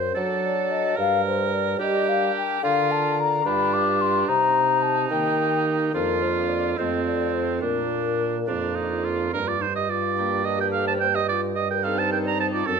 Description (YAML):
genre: classical, baroque-style sonata movement with continuo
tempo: 72 BPM (dotted quarters)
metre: 6/8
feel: straight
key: Bb major, G minor from 9.3 s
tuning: A4 = 439 Hz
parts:
  - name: mellow hollow concert flute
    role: melody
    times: 0.0-12.7 s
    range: C4 to D6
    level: -25 LUFS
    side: left 9 dB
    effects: none
  - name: clear oboe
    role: second line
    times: 0.0-12.8 s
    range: C4 to Bb5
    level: -26 LUFS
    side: right 8 dB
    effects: none
  - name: pipe organ, cornet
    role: accompaniment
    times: 0.0-12.8 s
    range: F2 to Bb4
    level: -29 LUFS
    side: right 1 dB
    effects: none
  - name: mellow bassoon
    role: bass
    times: 0.0-12.8 s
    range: F2 to G3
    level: -27 LUFS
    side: right 3 dB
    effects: none
room: moderate recital hall reverb, RT60 1.5 s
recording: none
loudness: -21 LUFS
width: side -6 dB against mid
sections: 0.0-9.3 A section; 9.3-12.8 A section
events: none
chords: 0.0 D7/F#; 1.0 Gm; 2.6 Bb/D; 3.4 G5; 4.3 Cm7; 5.9 Bb/F; 6.8 F; 7.6 Bb; 9.3 Gm; 11.0 Am7b5/G